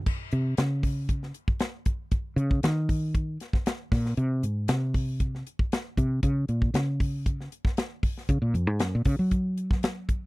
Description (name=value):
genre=electric jazz fusion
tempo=117 BPM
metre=4/4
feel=straight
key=unclear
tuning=A4 = 441 Hz
part: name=crisp fusion drum kit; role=drums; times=0.1-10.2 s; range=crash cymbal, hi-hat, kick drum, snare drum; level=-27 LUFS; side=equal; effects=none
part: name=woody fretless electric bass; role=bass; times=0.3-10.3 s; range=F2 to Gb3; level=-26 LUFS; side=equal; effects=tube saturation
room=little or no reverb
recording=dry, close 1970s-style studio recording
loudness=-25 LUFS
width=side -22 dB against mid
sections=0.1-10.3 A section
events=fretless electric bass solo 0.1-10.3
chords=none